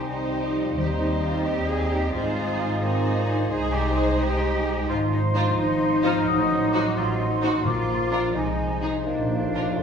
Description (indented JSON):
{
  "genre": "classical",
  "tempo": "87 BPM (dotted quarters)",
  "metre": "6/8",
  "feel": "straight",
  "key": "unclear",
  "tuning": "A4 = 440 Hz",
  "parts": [
    { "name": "warm symphonic violin section", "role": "melody", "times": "0.0-9.7 s", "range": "Ab4 to C5", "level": "-37 LUFS", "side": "equal", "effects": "none" },
    { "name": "mellow cor anglais", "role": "second line", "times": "0.0-9.8 s", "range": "Bb4 to Eb5", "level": "-34 LUFS", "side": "right 4 dB", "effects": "none" },
    { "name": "mellow large flute ensemble", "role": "second line", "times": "0.0-9.8 s", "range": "C5 to F6", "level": "-31 LUFS", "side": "left 1 dB", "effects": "none" },
    { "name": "rich symphonic violin section", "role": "second line", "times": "0.0-9.7 s", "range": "Eb4 to Ab4", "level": "-35 LUFS", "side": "left 1 dB", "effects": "none" },
    { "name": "warm clarinet", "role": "second line", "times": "0.0-9.8 s", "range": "C4 to F4", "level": "-32 LUFS", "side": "equal", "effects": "none" },
    { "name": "mellow bassoon", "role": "accompaniment", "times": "0.0-9.8 s", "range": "F3 to Bb3", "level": "-33 LUFS", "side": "right 2 dB", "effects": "none" },
    { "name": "warm symphonic viola section", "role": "accompaniment", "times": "0.0-9.7 s", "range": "D4 to Eb4", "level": "-32 LUFS", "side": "right 1 dB", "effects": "none" },
    { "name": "clear French horn section", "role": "sustained chords", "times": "0.0-9.8 s", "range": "Eb3 to F4", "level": "-31 LUFS", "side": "left 1 dB", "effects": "none" },
    { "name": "concert harp", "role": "arpeggios", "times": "0.0-9.8 s", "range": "Ab2 to Eb5", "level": "-30 LUFS", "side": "left 3 dB", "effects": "none" },
    { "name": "rich symphonic cello section", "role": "bass", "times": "0.0-9.8 s", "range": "D4 to Ab4", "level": "-31 LUFS", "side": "equal", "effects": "none" },
    { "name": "warm symphonic double bass section", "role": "bass", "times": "0.0-9.8 s", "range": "F1 to Eb2", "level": "-28 LUFS", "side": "right 1 dB", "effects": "none" },
    { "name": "timpani", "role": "percussion", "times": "0.8-1.4, 7.6-8.3 s", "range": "Bb2 to Eb3", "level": "-32 LUFS", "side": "left 1 dB", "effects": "none" }
  ],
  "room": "wet stone room reverb, RT60 1.2 s",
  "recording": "heard from further back in the room",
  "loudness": "-21 LUFS",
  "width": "side -7 dB against mid",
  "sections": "0.0-9.8 A section",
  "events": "none",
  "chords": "0.0 Cm; 0.8 Cm/Eb; 2.1 Ab; 3.5 Ab/C; 4.9 Fm7/Ab; 6.3 Adim7; 7.7 Bb; 8.4 Ab/C; 9.1 Bb",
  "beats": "0.09 | 0.78 1.46 | 2.15 2.83 | 3.51 4.18 | 4.89 5.58 | 6.27 6.96 | 7.65 8.35 | 9.06 9.79"
}